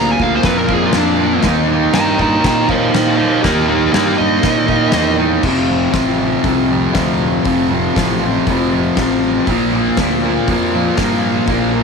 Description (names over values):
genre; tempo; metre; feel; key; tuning
garage rock duo or trio; 120 BPM; 4/4; straight; F mixolydian; A4 = 440 Hz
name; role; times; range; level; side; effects
fuzz lead guitar; melody; 0.0-5.2 s; D4 to Bb5; -18 LUFS; right 1 dB; distortion
fuzz guitar; riff; 0.0-11.8 s; F2 to Eb4; -14 LUFS; equal; distortion
fuzz fingered electric bass; bass; 0.0-11.8 s; F1 to Bb2; -22 LUFS; right 1 dB; overdrive
oversized low-tuned drum kit; drums; 0.2-11.6 s; crash cymbal, hi-hat, kick drum, snare drum; -21 LUFS; left 3 dB; none
room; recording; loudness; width
light reverb, small room ambience; 1960s-style stereo; -12 LUFS; side -5 dB against mid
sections
0.0-5.4 A section; 5.4-11.8 B section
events
lead electric guitar solo 0.0-5.4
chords
0.0 Bb; 1.4 Eb; 5.4 F; 9.5 Bb